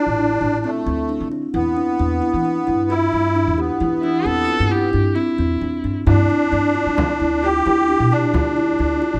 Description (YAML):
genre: contemporary instrumental, chamber music in an uneven meter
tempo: 132 BPM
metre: 5/4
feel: straight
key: C major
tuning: A4 = 440 Hz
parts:
  - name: musette accordion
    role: melody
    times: 0.0-9.2 s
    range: A3 to G4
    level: -23 LUFS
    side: equal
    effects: none
  - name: kalimba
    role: arpeggios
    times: 0.0-9.2 s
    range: C4 to G4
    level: -22 LUFS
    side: equal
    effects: none
  - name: upright bass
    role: bass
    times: 0.1-9.2 s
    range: A1 to G3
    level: -25 LUFS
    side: equal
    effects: none
  - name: rich viola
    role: second line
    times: 4.0-6.0 s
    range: E4 to A4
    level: -25 LUFS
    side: equal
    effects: none
  - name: frame drum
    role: percussion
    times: 6.1-8.6 s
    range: none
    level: -27 LUFS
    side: equal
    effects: none
room: light reverb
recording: close, detailed microphones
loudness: -19 LUFS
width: mono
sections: 0.0-9.2 A section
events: none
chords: 0.0 D7(no3); 1.5 Cmaj9/E (rootless); 6.1 G7(no3); 8.3 Dm